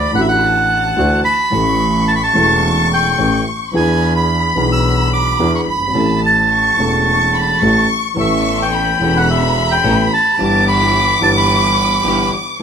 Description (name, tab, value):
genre	tango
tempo	108 BPM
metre	4/4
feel	rubato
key	unclear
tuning	A4 = 441 Hz
part	bandoneon	melody	0.0-12.3 s	D5 to E6	-15 LUFS	right 2 dB	none
part	warm symphonic violin section	second line	0.0-12.6 s	A5 to D6	-20 LUFS	left 2 dB	none
part	dark baby grand piano	accompaniment	0.0-12.6 s	E1 to A4	-18 LUFS	left 1 dB	none
part	bright double bass	bass	0.0-12.6 s	E1 to E2	-20 LUFS	equal	none
part	warm studio string section	stabs	8.2-12.3 s	B3 to A4	-25 LUFS	equal	none
room	moderate large studio reverb, RT60 0.9 s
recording	minimal, uncompressed stereo recording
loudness	-12 LUFS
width	side -7 dB against mid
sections	0.0-12.6 A section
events	none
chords	0.0 Dadd9; 1.5 A; 3.7 E7; 6.0 A; 8.2 Aadd9; 10.4 Em/G